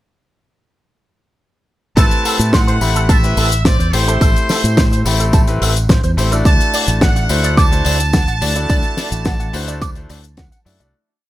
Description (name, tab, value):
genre	nu-disco, nu disco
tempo	107 BPM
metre	4/4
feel	straight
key	A dorian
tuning	A4 = 438 Hz
part	muted trumpet section	melody	2.0-10.4 s	C5 to A5	-22 LUFS	right 2 dB	tape echo
part	bright concert grand piano	accompaniment	2.0-10.9 s	A3 to B5	-22 LUFS	left 2 dB	none
part	electric guitar with an envelope filter	riff	2.0-10.8 s	A4 to D6	-24 LUFS	right 4 dB	ensemble chorus
part	fingered electric bass with an envelope filter	bass	2.0-10.9 s	A1 to A2	-17 LUFS	equal	none
part	damped 70s drum kit	drums	2.0-10.9 s	cabasa, hi-hat, rim click, snare drum	-20 LUFS	left 2 dB	small room ambience
part	electronic kick drum	drums	2.0-10.5 s	none	-14 LUFS	equal	small room ambience
part	tambourine	percussion	2.0-10.9 s	none	-31 LUFS	left 5 dB	none
room	studio ambience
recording	none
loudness	-12 LUFS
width	side -15 dB against mid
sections	2.0-10.9 drop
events	drop 2.0-10.9; fade-out 8.0-10.9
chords	2.0 Am7; 6.5 D7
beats	| 1.97 2.53 3.09 3.65 | 4.21 4.77 5.33 5.90 | 6.46 7.02 7.58 8.14 | 8.70 9.26 9.82 10.38